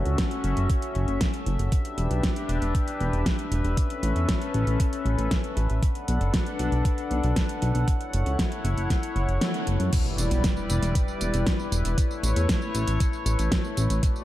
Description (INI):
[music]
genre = synthwave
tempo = 117 BPM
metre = 4/4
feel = straight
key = E dorian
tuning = A4 = 440 Hz
[part]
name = chorused pulse-width pad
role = sustained chords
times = 0.0-14.2 s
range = G3 to F#5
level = -29 LUFS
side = left 2 dB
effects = sidechain pumping
[part]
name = chorused synth bass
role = bass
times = 0.0-14.0 s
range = E1 to F#2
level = -24 LUFS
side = equal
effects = none
[part]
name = pop drum kit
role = drums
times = 0.1-14.2 s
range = crash cymbal, hi-hat, snare drum, tambourine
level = -31 LUFS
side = equal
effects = overdrive
[part]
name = electronic kick drum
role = drums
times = 0.2-14.1 s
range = none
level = -25 LUFS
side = equal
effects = none
[part]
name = impact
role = sound effects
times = 9.9-12.0 s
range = none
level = -34 LUFS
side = equal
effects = none
[sound]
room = light reverb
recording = dark, warm production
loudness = -23 LUFS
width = side -14 dB against mid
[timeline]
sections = 0.0-9.9 A section; 9.9-14.2 B section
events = kick drops out 9.4-9.9; band accent 9.4; impact 9.9-12.0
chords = 0.0 F#m7; 1.7 Em7; 3.8 Aadd9; 5.8 Bm7; 7.9 F#m7; 9.9 Em7; 12.0 Aadd9